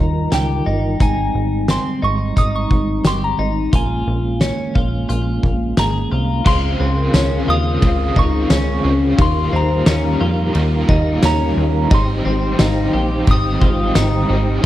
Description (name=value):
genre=dream pop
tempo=88 BPM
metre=4/4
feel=straight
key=Ab major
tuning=A4 = 440 Hz
part: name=soft synth bell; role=melody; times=0.0-14.7 s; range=G5 to Eb6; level=-24 LUFS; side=equal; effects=chorus, phaser, slapback echo
part: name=mellow tonewheel organ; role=sustained chords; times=0.0-14.7 s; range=Db3 to G5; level=-24 LUFS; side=right 2 dB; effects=chorus vibrato, stopped rotary speaker
part: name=twelve-string electric guitar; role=arpeggios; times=0.0-14.7 s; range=C4 to Ab4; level=-23 LUFS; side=left 3 dB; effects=lush chorus, slapback echo
part: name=plucky analog bass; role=bass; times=0.0-14.6 s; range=G1 to F2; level=-19 LUFS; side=equal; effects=none
part: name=oversized low-tuned drum kit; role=drums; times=0.3-14.1 s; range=crash cymbal, hi-hat, kick drum, ride cymbal, snare drum, tambourine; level=-19 LUFS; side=equal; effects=none
part: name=overdriven electric guitar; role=accompaniment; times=6.4-14.7 s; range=Ab2 to F4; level=-23 LUFS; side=right 1 dB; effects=tremolo, ensemble chorus
part: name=vibraphone with soft mallets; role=texture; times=7.0-14.7 s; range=Bb4 to F5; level=-33 LUFS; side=equal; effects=none
room=light reverb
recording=dark, warm production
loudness=-14 LUFS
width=side -14 dB against mid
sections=0.0-6.5 A section; 6.5-14.7 B section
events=none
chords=0.0 Ebadd9; 1.0 Abmaj7; 3.7 Bbm7; 6.5 Dbmaj7; 9.2 Ebadd9; 11.9 Abmaj7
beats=0.32 | 1.00 1.69 2.37 3.05 | 3.73 4.41 5.09 5.78 | 6.46 7.14 7.82 8.50 | 9.19 9.87 10.55 11.23 | 11.91 12.59 13.28 13.96 | 14.64